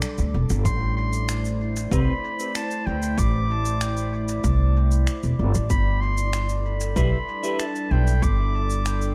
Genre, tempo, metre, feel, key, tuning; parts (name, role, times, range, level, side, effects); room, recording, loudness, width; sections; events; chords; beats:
ambient dub; 95 BPM; 4/4; straight; A minor; A4 = 439 Hz
warbly tape-like pad; sustained chords; 0.0-9.1 s; G3 to D5; -33 LUFS; equal; chorus, built-in reverb
electronic finger snaps and cabasa; drums; 0.0-9.1 s; -37 LUFS; equal; dub echo
upright bass; bass; 0.2-9.1 s; E1 to D2; -24 LUFS; equal
clear clarinet; melody; 0.6-9.1 s; G5 to D6; -33 LUFS; equal; dub echo
electronic kick drum; drums; 0.7-8.4 s; -27 LUFS; equal; overdrive
clean electric guitar; stabs; 1.9-2.1, 7.0-7.6 s; C4 to B4; -34 LUFS; equal; ensemble chorus, dub echo
light reverb; -23 LUFS; mono
0.0-9.1 A section
0.0 G5; 0.7 Am; 5.7 G6
0.02 | 0.65 1.28 1.91 2.55 | 3.18 3.81 4.44 5.07 | 5.70 6.33 6.97 7.60 | 8.23 8.86